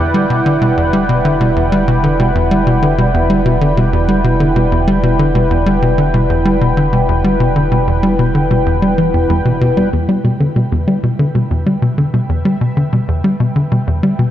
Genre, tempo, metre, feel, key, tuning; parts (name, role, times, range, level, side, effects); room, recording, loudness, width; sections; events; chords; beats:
ambient, sequencer-driven space music; 95 BPM; 4/4; straight; E minor; A4 = 441 Hz
sweeping resonant pad; sustained chords; 0.0-14.3 s; E4 to G5; -17 LUFS; equal; chorus, shimmer reverb
tight sequencer bass; riff; 0.0-14.3 s; E2 to G3; -13 LUFS; equal; vintage 12-bit sampler grit, tape echo
warm sub bass; bass; 0.0-9.9 s; E1; -21 LUFS; equal
wet concert hall reverb, RT60 1.9 s; dark, warm production; -11 LUFS; side -11 dB against mid
0.0-9.9 A section; 9.9-14.3 B section
0.0 Em7; 9.9 Em
0.45 1.08 1.72 | 2.35 2.98 3.61 4.24 | 4.88 5.51 6.14 6.77 | 7.40 8.03 8.66 9.30 | 9.93 10.56 11.19 11.82 | 12.45 13.09 13.72